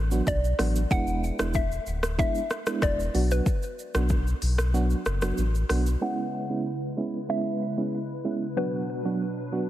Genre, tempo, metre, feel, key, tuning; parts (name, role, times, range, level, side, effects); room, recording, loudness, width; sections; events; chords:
afrobeats; 94 BPM; 4/4; straight; B dorian; A4 = 440 Hz
sub bass with octave; bass; 0.0-6.0 s; D1 to B1; -26 LUFS; equal
FM electric piano with tremolo; accompaniment; 0.1-9.7 s; F#3 to F#4; -30 LUFS; right 3 dB; low-pass filter
afro-pop drum kit; drums; 0.1-6.0 s; hi-hat, kick drum, rim click, shaker; -29 LUFS; equal
mallet-like synth pluck; melody; 0.3-9.7 s; B4 to F#5; -32 LUFS; left 2 dB; chorus, phaser, low-pass filter, ping-pong delay
hollow soft pad; sustained chords; 6.0-9.7 s; B2 to B4; -33 LUFS; left 1 dB; ensemble chorus, low-pass filter
light reverb; heavily compressed radio sound; -24 LUFS; side -13 dB against mid
0.0-6.0 A section; 6.0-9.7 B section
kick muted 4.7-6.0; filter sweep 6.0-9.7
0.0 Bm; 0.9 E7; 3.1 Bm; 6.0 C#m7; 8.6 Bm